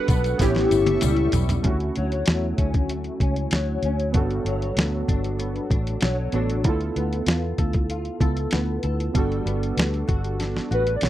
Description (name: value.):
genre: indie pop, bedroom pop.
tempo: 96 BPM.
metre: 4/4.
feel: straight.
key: unclear.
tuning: A4 = 440 Hz.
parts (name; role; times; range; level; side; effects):
warbly nostalgic lead; melody; 0.0-1.3, 10.7-11.1 s; G4 to D5; -24 LUFS; left 1 dB; tremolo, wide subtle chorus.
flamenco guitar; accompaniment; 0.0-11.1 s; G2 to A4; -29 LUFS; left 4 dB; ensemble chorus, vibrato effect.
warbly lo-fi synth keys; accompaniment; 0.0-11.1 s; A3 to A4; -29 LUFS; right 4 dB; chorus, cassette tape.
phased analog pad; sustained chords; 0.0-1.6 s; A4 to C#6; -35 LUFS; right 3 dB; phaser, chorus.
vintage muted fingered electric bass; bass; 0.1-11.1 s; G1 to E2; -25 LUFS; equal; none.
lo-fi sampler-style drum kit; drums; 0.1-11.1 s; hi-hat, kick drum, snare drum, toms; -23 LUFS; equal; none.
tambourine; percussion; 0.1-1.6 s; none; -38 LUFS; left 21 dB; none.
room: little or no reverb.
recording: dry, close 1970s-style studio recording.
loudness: -21 LUFS.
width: side -13 dB against mid.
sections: 0.0-1.6 A section; 1.6-11.1 B section.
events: drum fill 0.4-1.6, 10.4-11.1.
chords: 0.4 A7; 1.6 Dmaj7; 4.1 Gmaj7; 6.6 Dm6; 9.1 Gmaj7.